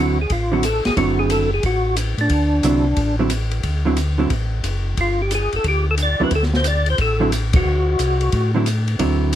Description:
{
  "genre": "soul jazz organ trio",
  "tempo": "179 BPM",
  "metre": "4/4",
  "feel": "swing 65% on 8ths",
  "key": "D mixolydian",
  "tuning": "A4 = 439 Hz",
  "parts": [
    { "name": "percussive tonewheel organ", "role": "melody", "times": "0.0-8.5 s", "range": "D4 to D5", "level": "-20 LUFS", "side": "left 1 dB", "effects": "slow rotary speaker, chorus vibrato" },
    { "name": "vintage hollow-body jazz guitar", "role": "accompaniment", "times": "0.0-9.4 s", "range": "D3 to E4", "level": "-20 LUFS", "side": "right 4 dB", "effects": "none" },
    { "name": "mellow tonewheel organ", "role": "bass", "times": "0.0-9.4 s", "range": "F#1 to A2", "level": "-20 LUFS", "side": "equal", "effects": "slow rotary speaker" },
    { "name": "open jazz drum kit", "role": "drums", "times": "0.3-9.4 s", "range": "hi-hat, kick drum, ride cymbal, snare drum", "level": "-24 LUFS", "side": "left 1 dB", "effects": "none" }
  ],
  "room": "little or no reverb",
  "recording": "close, detailed microphones",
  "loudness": "-16 LUFS",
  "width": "side -11 dB against mid",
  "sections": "0.0-9.4 A section",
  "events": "band accent 7.5",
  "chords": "0.0 D9; 5.0 G5; 6.3 D9",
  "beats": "0.30 0.63 | 0.97 1.30 1.63 1.97 | 2.30 2.64 2.97 3.31 | 3.64 3.97 4.31 4.64 | 4.98 5.31 5.65 5.98 | 6.32 6.65 6.99 7.32 | 7.65 7.99 8.32 8.66 | 8.99 9.33"
}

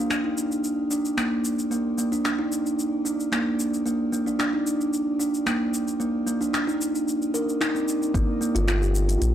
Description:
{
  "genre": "organic downtempo",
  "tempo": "112 BPM",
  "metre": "4/4",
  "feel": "straight",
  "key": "C minor",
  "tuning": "A4 = 440 Hz",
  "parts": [
    { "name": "kalimba", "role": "arpeggios", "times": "0.0-9.3 s", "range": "Bb3 to Bb4", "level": "-24 LUFS", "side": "right 1 dB", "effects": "analog delay, shimmer reverb" },
    { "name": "organic electronic drum kit", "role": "drums", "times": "0.1-9.3 s", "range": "cabasa, finger snaps, hi-hat", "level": "-30 LUFS", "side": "left 1 dB", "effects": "none" },
    { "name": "warm sub bass", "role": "bass", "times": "8.1-9.3 s", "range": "G1 to Bb1", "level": "-22 LUFS", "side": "left 1 dB", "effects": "sidechain pumping" },
    { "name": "electronic kick drum", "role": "drums", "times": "8.1-8.3 s", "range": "none", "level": "-24 LUFS", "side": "left 1 dB", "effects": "overdrive" }
  ],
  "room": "moderate digital room reverb, RT60 1.1 s",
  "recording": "dry, gritty hardware recording",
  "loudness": "-22 LUFS",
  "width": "side -10 dB against mid",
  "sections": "0.0-8.1 A section; 8.1-9.3 B section",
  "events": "none",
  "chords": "0.0 Cm9 (rootless); 8.1 Gm7",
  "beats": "0.11 0.64 1.18 | 1.71 2.25 2.79 3.32 | 3.86 4.39 4.93 5.46 | 6.00 6.54 7.07 7.61 | 8.14 8.68 9.21"
}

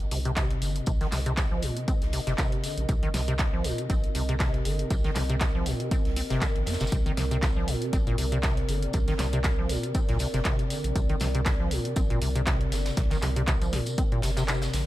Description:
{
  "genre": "acid house",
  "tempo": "119 BPM",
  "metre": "4/4",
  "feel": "swing 55% on 16ths",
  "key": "C minor",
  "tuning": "A4 = 438 Hz",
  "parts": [
    { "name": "dark analog pad", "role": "sustained chords", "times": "0.0-14.9 s", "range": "C4 to Eb5", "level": "-35 LUFS", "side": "right 1 dB", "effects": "chorus, sidechain pumping" },
    { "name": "round analog bass", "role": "bass", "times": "0.0-14.8 s", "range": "G1 to F2", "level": "-30 LUFS", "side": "equal", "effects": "tube saturation, sidechain pumping" },
    { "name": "punchy analog drum machine", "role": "drums", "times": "0.0-14.8 s", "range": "handclaps, hi-hat, snare drum", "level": "-33 LUFS", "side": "equal", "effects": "none" },
    { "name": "acid bass, square", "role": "riff", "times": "0.1-14.9 s", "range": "Bb2 to C4", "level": "-30 LUFS", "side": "left 1 dB", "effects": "tube saturation, lush chorus, cassette tape, ping-pong delay" },
    { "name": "tambourine and snare drum", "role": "drums", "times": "0.1-14.9 s", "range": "none", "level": "-41 LUFS", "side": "equal", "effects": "high-pass filter on snare, sidechain pumping on perc, high-pass filter on perc, high-pass filter on room" },
    { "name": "electronic kick drum", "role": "drums", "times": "0.4-14.1 s", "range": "none", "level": "-27 LUFS", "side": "equal", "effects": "none" }
  ],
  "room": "small room reverb",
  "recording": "none",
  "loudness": "-24 LUFS",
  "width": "side -15 dB against mid",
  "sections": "0.0-14.9 A section",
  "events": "kick drops out 14.5-14.9",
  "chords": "0.0 Cm7",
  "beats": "0.37 | 0.87 1.38 1.88 2.38 | 2.89 3.39 3.90 4.40 | 4.91 5.41 5.91 6.42 | 6.92 7.43 7.93 8.44 | 8.94 9.44 9.95 10.45 | 10.96 11.46 11.96 12.47 | 12.97 13.48 13.98 14.48"
}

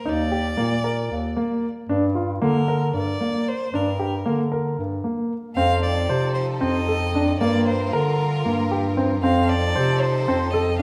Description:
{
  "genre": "contemporary instrumental, chamber music in an uneven meter",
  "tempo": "229 BPM (eighths)",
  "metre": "7/8",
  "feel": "straight",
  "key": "G minor",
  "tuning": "A4 = 440 Hz",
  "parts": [
    { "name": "rich violin", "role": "melody", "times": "0.0-10.8 s", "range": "Bb4 to F5", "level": "-29 LUFS", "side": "equal", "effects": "none" },
    { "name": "warm grand piano", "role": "arpeggios", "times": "0.1-10.8 s", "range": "Bb3 to C5", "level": "-26 LUFS", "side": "equal", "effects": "none" },
    { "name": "breathy bass clarinet", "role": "bass", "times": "0.1-10.8 s", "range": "Eb2 to D3", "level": "-26 LUFS", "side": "equal", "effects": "none" },
    { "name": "clear studio string section", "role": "sustained chords", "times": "5.5-10.8 s", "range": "F3 to Bb4", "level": "-34 LUFS", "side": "equal", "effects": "none" }
  ],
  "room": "wet recital hall reverb, RT60 1.5 s",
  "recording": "none",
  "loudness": "-22 LUFS",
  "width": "mono",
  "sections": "0.0-5.6 A section; 5.6-10.8 B section",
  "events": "none",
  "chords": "0.1 Ebmaj7(no3); 1.9 Gm; 5.6 F7; 7.4 Gm7; 9.2 F7",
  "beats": "| 0.06 0.33 0.59 0.85 1.11 1.38 1.64 | 1.90 2.16 2.42 2.69 2.95 3.21 3.47 | 3.74 4.00 4.26 4.52 4.79 5.05 5.31 | 5.57 5.83 6.09 6.36 6.62 6.88 7.14 | 7.40 7.67 7.93 8.19 8.45 8.71 8.97 | 9.23 9.50 9.76 10.02 10.28 10.54 10.80"
}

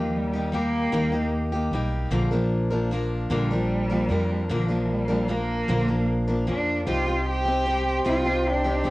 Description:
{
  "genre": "acoustic folk duo or small band",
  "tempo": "50 BPM (dotted quarters)",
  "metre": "6/8",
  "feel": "straight",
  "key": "Bb major",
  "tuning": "A4 = 440 Hz",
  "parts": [
    { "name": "rich cello", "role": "melody", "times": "0.0-8.9 s", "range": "F3 to G4", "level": "-27 LUFS", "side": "right 1 dB", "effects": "none" },
    { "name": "picked steel-string acoustic guitar", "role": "accompaniment", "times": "0.0-8.9 s", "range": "Bb2 to Bb4", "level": "-26 LUFS", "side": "left 1 dB", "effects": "cassette tape" },
    { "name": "upright bass", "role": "bass", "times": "0.0-8.9 s", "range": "Bb1 to G2", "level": "-28 LUFS", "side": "equal", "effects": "none" },
    { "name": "pedal harmonium", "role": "sustained chords", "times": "6.9-8.9 s", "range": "G4 to C6", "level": "-29 LUFS", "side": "equal", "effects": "cassette tape" }
  ],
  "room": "light reverb, studio ambience",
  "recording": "home recording on cassette",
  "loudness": "-22 LUFS",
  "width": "side -19 dB against mid",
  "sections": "0.0-8.9 A section",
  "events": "cello solo 0.0-8.9",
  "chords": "0.0 Eb; 2.1 Bb; 6.9 Cm",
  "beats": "0.92 | 2.11 3.31 | 4.50 5.68 | 6.88 8.06"
}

